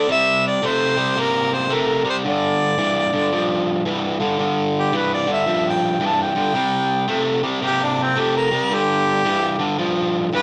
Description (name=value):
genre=blues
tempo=111 BPM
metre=4/4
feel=swing 64% on 8ths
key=unclear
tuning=A4 = 440 Hz
part: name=clear harmonica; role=melody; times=0.0-10.4 s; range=C4 to A5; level=-22 LUFS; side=equal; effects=overdrive
part: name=overdriven semi-hollow guitar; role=riff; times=0.0-10.4 s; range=G2 to Bb3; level=-22 LUFS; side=equal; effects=none
room=moderate studio ambience, RT60 0.5 s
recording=none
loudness=-20 LUFS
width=mono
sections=0.0-4.4 A section; 4.4-10.4 B section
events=harmonica solo 4.4-10.4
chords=0.1 C5; 2.2 G5; 6.5 C5; 8.7 G7(no3)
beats=| 0.09 0.62 1.16 1.70 | 2.24 2.78 3.32 3.86 | 4.39 4.93 5.47 6.01 | 6.55 7.09 7.63 8.17 | 8.71 9.24 9.78 10.32